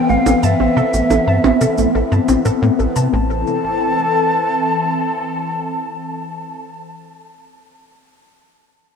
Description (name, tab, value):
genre	ambient, sequencer-driven space music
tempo	89 BPM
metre	4/4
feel	straight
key	A minor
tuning	A4 = 440 Hz
part	mellow hollow silver concert flute	melody	0.0-6.6 s	E5 to A5	-20 LUFS	left 2 dB	ping-pong delay
part	phased analog pad	sustained chords	0.0-6.6 s	E3 to A4	-19 LUFS	left 2 dB	phaser, chorus
part	warbly dusty pluck	arpeggios	0.0-3.4 s	A3 to A5	-22 LUFS	moving between left 4 dB and right 7 dB	chorus, auto-pan, ping-pong delay
part	tight sequencer bass	riff	0.1-3.4 s	A1 to C3	-19 LUFS	equal	cassette tape, ping-pong delay
part	percussion blips and shaker	percussion	0.3-3.1 s	none	-24 LUFS	right 5 dB	ping-pong delay
room	wet plate reverb, RT60 3.4 s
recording	dreamy mix soaked in reverb, cassette tape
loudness	-14 LUFS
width	side -6 dB against mid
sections	0.0-3.1 A section; 3.1-5.8 B section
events	none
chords	0.0 Am